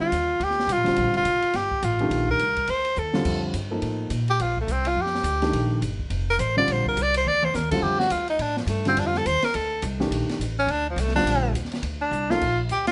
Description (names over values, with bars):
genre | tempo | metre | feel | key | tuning
modal jazz | 210 BPM | 4/4 | swing 60% on 8ths | Bb major | A4 = 442 Hz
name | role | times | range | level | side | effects
breathy tenor saxophone | melody | 0.0-12.9 s | F3 to D5 | -25 LUFS | equal | none
dark baby grand piano | accompaniment | 0.0-12.4 s | D3 to A4 | -30 LUFS | equal | none
upright bass | bass | 0.0-12.9 s | F1 to Bb2 | -30 LUFS | equal | none
open jazz drum kit | drums | 0.1-12.9 s | crash cymbal, hi-hat, kick drum, ride cymbal, snare drum, toms | -36 LUFS | equal | none
room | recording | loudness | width
light reverb | nothing above 10.9 kHz | -24 LUFS | mono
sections
0.0-12.4 A section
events
tenor saxophone solo 0.0-12.4; drum fill 3.0, 7.3, 12.1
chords
0.0 Bbmaj9; 12.4 Bb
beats
0.11 0.40 0.69 | 0.97 1.26 1.54 1.83 | 2.11 2.40 2.69 2.97 | 3.26 3.54 3.83 4.11 | 4.40 4.68 4.97 5.26 | 5.54 5.83 6.11 6.40 | 6.68 6.97 7.26 7.54 | 7.83 8.11 8.40 8.69 | 8.97 9.26 9.54 9.83 | 10.12 10.40 10.69 10.98 | 11.26 11.55 11.84 12.12 | 12.41 12.70